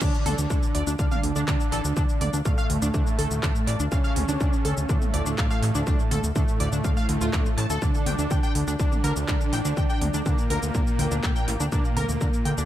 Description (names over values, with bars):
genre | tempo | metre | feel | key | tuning
melodic techno | 123 BPM | 4/4 | straight | D harmonic minor | A4 = 439 Hz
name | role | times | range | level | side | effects
wide unison lead | melody | 0.0-12.6 s | A3 to D4 | -30 LUFS | equal | sidechain pumping, analog delay
big bright polysynth | second line | 0.0-12.6 s | A2 to D3 | -33 LUFS | right 4 dB | chorus, sidechain pumping, tape echo
deep dark ambient pad | sustained chords | 0.2-12.7 s | F5 to Bb5 | -42 LUFS | right 1 dB | chorus, built-in reverb, vintage 12-bit sampler grit, sidechain pumping
tight sequenced synth | arpeggios | 0.0-12.6 s | D4 to A5 | -32 LUFS | equal | chorus, sidechain pumping, tape echo
fat analog bass | bass | 0.0-12.7 s | A1 to D2 | -27 LUFS | equal | sidechain pumping
electronic kick drum | drums | 0.0-12.3 s | none | -25 LUFS | equal | none
techno drum kit | drums | 0.0-12.7 s | crash cymbal, handclaps, hi-hat, shaker, toms | -33 LUFS | equal | high-pass filter on toms, high-pass filter on perc, high-pass filter on hats, high-pass filter on cymbals, high-pass filter on snare, high-pass filter on room, tape echo
room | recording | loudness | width
light reverb | echo-heavy mix | -22 LUFS | side -12 dB against mid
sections
0.0-12.7 A section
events
drop 0.0-12.7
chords
0.0 Dm; 7.8 Gm